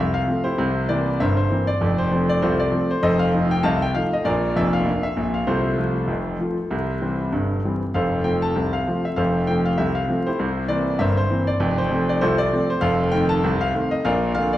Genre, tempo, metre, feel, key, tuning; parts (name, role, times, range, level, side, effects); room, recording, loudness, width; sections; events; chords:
ragtime piano; 98 BPM; 2/4; swing 58% on 16ths; F major; A4 = 441 Hz
clear concert grand piano; solo; 0.0-14.6 s; F1 to A5; -19 LUFS; equal
wet recital hall reverb, RT60 1.8 s; recorded in a church or concert hall, vinyl crackle; -19 LUFS; side -14 dB against mid
0.0-14.6 A section
0.0 F; 0.6 C7; 1.8 F; 3.0 F7; 4.3 Bb; 5.5 F/C; 6.7 C; 7.9 F; 10.4 C7; 11.6 F; 12.8 F7; 14.0 Bb